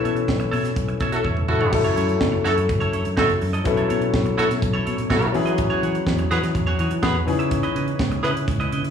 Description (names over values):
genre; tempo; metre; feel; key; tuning
disco; 124 BPM; 4/4; straight; F# dorian; A4 = 442 Hz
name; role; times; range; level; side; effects
semi-hollow electric guitar; accompaniment; 0.0-8.9 s; E4 to F#5; -28 LUFS; right 6 dB; spring reverb, slapback echo
warm concert grand piano; accompaniment; 0.0-8.9 s; E3 to A4; -24 LUFS; left 6 dB; slapback echo
fingered electric bass; bass; 0.0-8.9 s; E1 to E3; -24 LUFS; right 1 dB; none
tight funk drum kit; drums; 0.1-8.9 s; crash cymbal, hi-hat, kick drum, snare drum, toms; -26 LUFS; right 1 dB; none
warm horn section; stabs; 1.1-8.3 s; E4 to B4; -25 LUFS; right 1 dB; slapback echo
room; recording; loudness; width
light reverb, studio reverb; live gig heard through the venue's PA, club reverb; -19 LUFS; side -7 dB against mid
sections
0.0-1.7 A section; 1.7-8.9 B section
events
band accent 0.0-1.7; drum fill 1.2-1.7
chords
0.0 B9sus4; 1.7 F#m7; 3.7 B9sus4; 5.3 E69; 7.3 C#m9